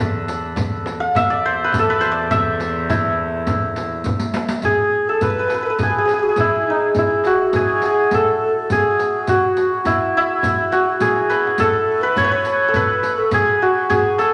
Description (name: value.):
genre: Persian modal ensemble.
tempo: 104 BPM.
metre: 3/4.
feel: straight.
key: E dastgah shur, E dastgah mahur from 4.6 s.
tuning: A4 = 441 Hz.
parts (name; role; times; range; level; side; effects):
santur; melody; 0.0-14.3 s; D#4 to F5+45c; -19 LUFS; equal; none.
rich cello; drone; 0.0-4.7 s; E2; -31 LUFS; equal; none.
tombak; percussion; 0.0-14.3 s; none; -30 LUFS; equal; none.
frame drum; percussion; 0.3-14.3 s; none; -32 LUFS; equal; none.
riq; percussion; 0.3-14.3 s; none; -32 LUFS; equal; none.
breathy low ney; second line; 4.6-14.3 s; D#4 to C#5; -25 LUFS; equal; none.
room: wet large studio reverb, RT60 1.0 s.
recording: nothing above 10.8 kHz.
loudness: -18 LUFS.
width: mono.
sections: 0.0-4.6 A section; 4.6-14.3 B section.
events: drum fill 4.1-4.6, 11.0-11.6.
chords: none.